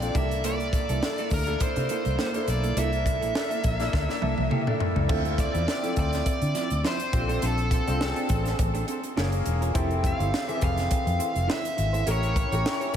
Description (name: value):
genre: polished 1980s jazz-funk pop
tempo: 103 BPM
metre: 4/4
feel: swing 54% on 16ths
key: unclear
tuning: A4 = 439 Hz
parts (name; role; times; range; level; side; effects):
- nasal lead guitar with a parked wah; melody; 0.0-13.0 s; A4 to F5; -31 LUFS; right 1 dB; overdrive, ping-pong delay
- clear grand piano; accompaniment; 0.0-13.0 s; E3 to A5; -31 LUFS; left 2 dB; lush chorus
- electric guitar at the edge of break-up; riff; 0.0-13.0 s; F3 to C#5; -35 LUFS; right 7 dB; wide subtle chorus
- vintage muted fingered electric bass; bass; 0.0-12.6 s; E1 to D3; -28 LUFS; equal; none
- crisp fusion drum kit; drums; 0.0-13.0 s; crash cymbal, hi-hat, kick drum, snare drum, toms; -29 LUFS; equal; none
room: moderate huge ambient reverb, RT60 4.9 s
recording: dreamy mix soaked in reverb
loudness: -23 LUFS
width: side -9 dB against mid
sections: 0.0-5.1 A section; 5.1-13.0 B section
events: drum fill 3.9-5.1; grand piano fill 3.9-5.1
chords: 0.1 C13; 5.1 Dm9; 7.1 Bbmaj9; 9.2 Gbmaj7; 9.7 Fmaj7; 12.1 A7b9